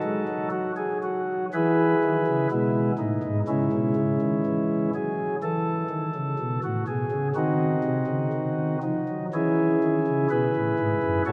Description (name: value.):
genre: classical, chorale-style piece for pipe organ.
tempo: 62 BPM.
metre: 4/4.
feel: rubato.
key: unclear.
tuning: A4 = 440 Hz.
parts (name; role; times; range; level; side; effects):
pipe organ, flutes; solo; 0.0-11.3 s; F#2 to C#5; -25 LUFS; equal; none.
room: wet cathedral reverb, RT60 4.5 s.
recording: none.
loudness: -25 LUFS.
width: mono.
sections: 0.0-11.3 A section.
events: none.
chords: 0.0 D#dim/F#; 1.5 E; 3.5 C#m; 7.3 Cdim; 9.3 C#m.